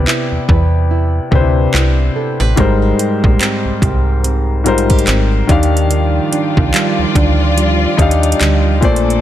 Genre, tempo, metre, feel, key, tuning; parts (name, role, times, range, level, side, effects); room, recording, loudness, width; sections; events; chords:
contemporary R&B; 72 BPM; 4/4; swing 58% on 16ths; A4 = 439 Hz
warm grand piano; accompaniment; 0.0-9.2 s; Ab2 to F5; -16 LUFS; left 4 dB
flamenco guitar; arpeggios; 0.0-9.2 s; Eb3 to D5; -20 LUFS; right 8 dB; ping-pong delay
slap-like FM bass; bass; 0.0-9.2 s; Ab1 to E2; -14 LUFS; equal
smooth R&B drum kit; drums; 0.1-9.2 s; handclaps, hi-hat, kick drum; -16 LUFS; equal
warm studio string section; sustained chords; 5.9-9.2 s; Bb2 to D5; -19 LUFS; left 2 dB
small room ambience; -11 LUFS; side -12 dB against mid
0.0-9.2 A section
0.0 Cmaj9; 2.6 Abmaj9; 5.5 Ebmaj9